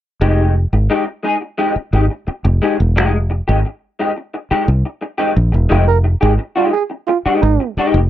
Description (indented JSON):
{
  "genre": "funk",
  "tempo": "87 BPM",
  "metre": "4/4",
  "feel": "straight",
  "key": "F minor",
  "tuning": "A4 = 439 Hz",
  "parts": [
    { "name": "electric guitar through a small old amp", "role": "accompaniment", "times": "0.2-8.0 s", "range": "Ab3 to Ab4", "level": "-17 LUFS", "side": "left 2 dB", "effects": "ensemble chorus" },
    { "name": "fingered electric bass", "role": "bass", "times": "0.2-8.1 s", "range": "E1 to C2", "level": "-13 LUFS", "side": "equal", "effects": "none" },
    { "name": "dark trombone", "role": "second line", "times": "5.9-7.7 s", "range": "Eb4 to Bb4", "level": "-16 LUFS", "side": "right 8 dB", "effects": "none" }
  ],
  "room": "little or no reverb",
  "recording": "dry, close 1970s-style studio recording",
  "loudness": "-14 LUFS",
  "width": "side -12 dB against mid",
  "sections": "0.2-5.7 A section; 5.7-8.1 B section",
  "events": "none",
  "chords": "0.2 Fm9",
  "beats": "| 0.21 0.90 1.59 2.28 | 2.96 3.65 4.34 5.03 | 5.71 6.40 7.08 7.77"
}